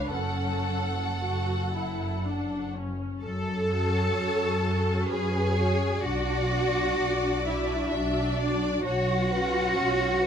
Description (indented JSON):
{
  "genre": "classical, slow romantic movement for string orchestra",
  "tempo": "56-66 BPM",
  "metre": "3/4",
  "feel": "rubato",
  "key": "F# minor",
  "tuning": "A4 = 440 Hz",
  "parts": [
    { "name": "warm studio violin section", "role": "melody", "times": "0.0-10.3 s", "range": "D5 to A5", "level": "-35 LUFS", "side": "left 1 dB", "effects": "none" },
    { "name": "warm studio violin section", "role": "second line", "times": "0.0-10.3 s", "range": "A4 to E5", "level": "-33 LUFS", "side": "left 1 dB", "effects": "none" },
    { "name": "rich studio viola section", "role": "accompaniment", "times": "0.0-10.3 s", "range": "C#4 to B4", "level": "-32 LUFS", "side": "equal", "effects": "none" },
    { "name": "rich studio double bass section", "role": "bass", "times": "0.0-10.3 s", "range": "F#1 to F#2", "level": "-30 LUFS", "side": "equal", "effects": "none" },
    { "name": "warm studio cello section", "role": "bass", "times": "0.0-10.3 s", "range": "C#2 to A4", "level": "-29 LUFS", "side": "equal", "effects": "none" }
  ],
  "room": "little or no reverb",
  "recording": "close, detailed microphones",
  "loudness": "-25 LUFS",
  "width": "side -8 dB against mid",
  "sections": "0.0-3.2 A section; 3.2-10.3 A section",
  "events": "none",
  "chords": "0.1 F#m; 6.0 Bm; 8.8 C#7/B",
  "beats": "| 0.12 1.18 2.22 | 3.21 4.16 5.09 | 6.03 6.98 7.91 | 8.84 9.76"
}